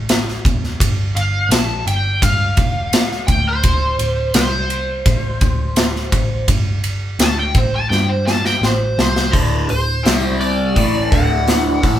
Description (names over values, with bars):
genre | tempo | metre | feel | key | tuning
blues rock power trio and southern rock | 84 BPM | 4/4 | straight | unclear | A4 = 440 Hz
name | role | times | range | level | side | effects
vintage muted picked electric bass | bass | 0.0-12.0 s | D1 to G2 | -20 LUFS | equal | none
big rock drum kit | drums | 0.1-12.0 s | hi-hat, kick drum, ride cymbal, snare drum | -17 LUFS | equal | none
lead guitar through a small cranked amp | melody | 1.2-12.0 s | C5 to A5 | -20 LUFS | equal | wah, overdrive
raw garage guitar | riff | 9.3-12.0 s | D2 to C4 | -18 LUFS | equal | overdrive, phaser
room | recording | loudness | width
light reverb | band playing live in one room | -14 LUFS | side -11 dB against mid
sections
0.0-9.3 A section; 9.3-12.0 B section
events
lead electric guitar solo 0.0-9.3; drum fill 7.9-9.3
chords
0.0 A5; 0.8 G5; 3.6 Csus2/D; 4.3 N.C.; 5.1 D5; 6.5 N.C.; 7.2 Amadd11; 7.9 Gsus24; 8.6 Am; 9.3 D5; 10.0 C5; 10.8 D